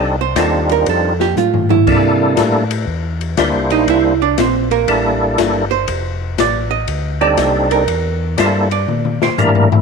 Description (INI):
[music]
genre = soul jazz organ trio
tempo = 120 BPM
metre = 4/4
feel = swing 67% on 8ths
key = F major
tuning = A4 = 440 Hz
[part]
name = percussive tonewheel organ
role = melody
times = 0.0-9.8 s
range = G3 to C5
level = -17 LUFS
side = equal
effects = chorus vibrato, fast rotary speaker
[part]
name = archtop guitar, miked and amplified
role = accompaniment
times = 0.0-9.7 s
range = Bb3 to E5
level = -17 LUFS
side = right 14 dB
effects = none
[part]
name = mellow tonewheel organ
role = bass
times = 0.0-9.8 s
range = F1 to C3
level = -20 LUFS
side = left 1 dB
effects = overdrive, chorus vibrato, slow rotary speaker
[part]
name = open jazz drum kit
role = drums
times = 0.4-9.8 s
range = crash cymbal, hi-hat, kick drum, ride cymbal, snare drum, toms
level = -19 LUFS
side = left 8 dB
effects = none
[sound]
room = light reverb, studio ambience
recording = 1960s-style stereo with parts hard left and right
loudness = -13 LUFS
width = side -5 dB against mid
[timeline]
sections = 0.0-9.8 A section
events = hollow-body jazz guitar solo 0.0-9.8; drum fill 1.4-1.9, 8.9-9.8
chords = 0.0 F13; 1.9 C13; 5.9 F13; 7.9 C13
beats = 0.36 0.87 1.37 | 1.87 2.37 2.87 3.38 | 3.88 4.38 4.88 5.38 | 5.88 6.38 6.89 7.39 | 7.89 8.39 8.89 9.39